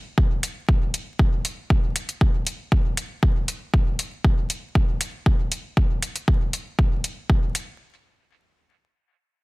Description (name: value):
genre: dub techno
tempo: 118 BPM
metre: 4/4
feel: straight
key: none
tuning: none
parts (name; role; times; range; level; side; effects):
- electronic kick drum; drums; 0.2-7.4 s; none; -19 LUFS; equal; overdrive
- electronic hi-hat; drums; 0.4-7.7 s; none; -28 LUFS; equal; overdrive
room: little or no reverb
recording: dense, heavily limited modern master, vinyl crackle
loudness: -21 LUFS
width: side -22 dB against mid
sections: 0.0-7.8 A section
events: none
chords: none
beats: 0.18 0.69 1.19 | 1.70 2.21 2.72 3.23 | 3.74 4.24 4.75 5.26 | 5.77 6.28 6.79 7.29